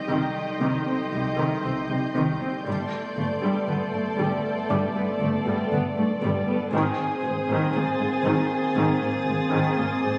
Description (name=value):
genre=cinematic, suspense film score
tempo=59 BPM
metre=4/4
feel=straight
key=unclear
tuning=A4 = 440 Hz
part: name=muted symphonic violin section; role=melody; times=0.0-10.2 s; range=C5 to Eb5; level=-35 LUFS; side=equal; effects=none
part: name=muted symphonic violin section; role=second line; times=0.0-10.2 s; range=G4 to A4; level=-35 LUFS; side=equal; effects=none
part: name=mellow French horn section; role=sustained chords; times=0.0-10.2 s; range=G3 to Eb4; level=-32 LUFS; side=equal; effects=none
part: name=metallic inharmonic drone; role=drone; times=0.0-10.2 s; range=G1 to C2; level=-41 LUFS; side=equal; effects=none
part: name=impact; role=sound effects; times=0.0-2.7 s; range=none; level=barely audible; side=none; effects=none
part: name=felt-muted upright piano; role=texture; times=0.0-10.2 s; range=D5 to Eb6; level=-41 LUFS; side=equal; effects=none
part: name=muted symphonic violin section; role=texture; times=0.0-10.2 s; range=C6 to A6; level=-39 LUFS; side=equal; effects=none
part: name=muted symphonic viola section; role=accompaniment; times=0.1-10.1 s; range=Eb3 to C4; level=-31 LUFS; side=equal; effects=none
part: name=muted symphonic cello section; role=bass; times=0.1-10.1 s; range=G2 to C3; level=-32 LUFS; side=equal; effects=none
part: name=muted symphonic double bass section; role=bass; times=0.1-9.9 s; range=G1 to C2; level=-34 LUFS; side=equal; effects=none
room=moderate scoring stage reverb, RT60 1.5 s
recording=recorded on a phone in the room, studio ambience, nothing above 10.8 kHz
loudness=-25 LUFS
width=mono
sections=0.0-10.2 A section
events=impact 0.0-2.7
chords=0.0 Cm; 2.7 Gadd9; 6.7 Abadd9